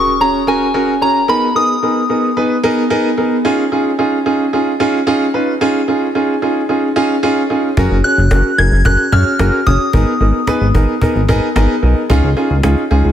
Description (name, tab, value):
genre	synth-pop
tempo	111 BPM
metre	4/4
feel	straight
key	unclear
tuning	A4 = 440 Hz
part	soft synth bell	melody	0.0-2.6, 8.0-10.7 s	G#5 to G#6	-16 LUFS	left 1 dB	chorus, digital delay
part	warm baby grand piano	accompaniment	0.0-13.1 s	B3 to C#5	-14 LUFS	right 1 dB	none
part	impact	sound effects	0.0-1.3 s	none	-35 LUFS	equal	none
part	chorused synth bass	bass	7.8-13.1 s	F#1 to F#2	-12 LUFS	equal	none
part	cajon	drums	7.8-13.1 s	none	-19 LUFS	equal	none
room	moderate lush hall reverb, RT60 2.7 s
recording	dense, heavily limited modern master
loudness	-12 LUFS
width	side -10 dB against mid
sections	0.0-13.1 A section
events	impact 0.0-1.3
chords	0.0 F#add9; 1.3 G#madd9; 3.4 C#add9; 7.8 F#add9; 9.9 G#madd9; 12.1 C#add9